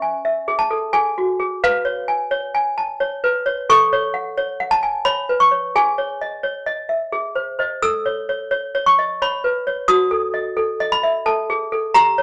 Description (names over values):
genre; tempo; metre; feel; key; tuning
classical, lullaby for toy piano; 87 BPM; 3/4; straight; C# minor; A4 = 440 Hz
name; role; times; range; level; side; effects
toy piano; solo; 0.0-12.2 s; F#4 to E6; -19 LUFS; equal; none
room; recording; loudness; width
moderate studio reverb, RT60 0.6 s; none; -19 LUFS; mono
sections
0.0-12.2 A section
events
none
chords
0.0 C#m; 1.6 C#7/B; 3.7 F#m/A; 5.7 G#sus4; 7.1 G#; 7.8 A (rootless); 9.9 D#(b5, no3)